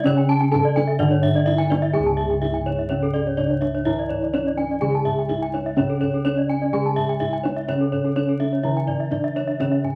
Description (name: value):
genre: Balinese gamelan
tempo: 125 BPM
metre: 4/4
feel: straight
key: C# pelog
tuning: A4 = 440 Hz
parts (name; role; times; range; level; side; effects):
- gamelan-type bronze metallophone; melody; 0.0-10.0 s; C#4 to A4-20c; -27 LUFS; equal; none
- gamelan-type bronze metallophone; accompaniment; 0.0-10.0 s; C#3 to G#3-30c; -28 LUFS; equal; none
- gamelan-type bronze metallophone; arpeggios; 0.0-9.8 s; A4-20c to A5-20c; -30 LUFS; equal; none
- gamelan-type bossed gongs; bass; 0.0-10.0 s; C#2 to G#4-30c; -29 LUFS; equal; none
- gamelan-type bronze metallophone; arpeggios; 0.1-10.0 s; C#5 to A5-20c; -30 LUFS; equal; none
- kendang; percussion; 0.1-9.9 s; none; -34 LUFS; equal; none
room: light reverb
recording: vinyl crackle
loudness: -22 LUFS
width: mono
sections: 0.0-1.9 A section; 1.9-10.0 B section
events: none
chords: none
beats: | 0.06 0.53 1.00 1.47 | 1.95 2.42 2.90 3.38 | 3.86 4.34 4.82 5.29 | 5.77 6.25 6.73 7.21 | 7.69 8.16 8.64 9.12 | 9.60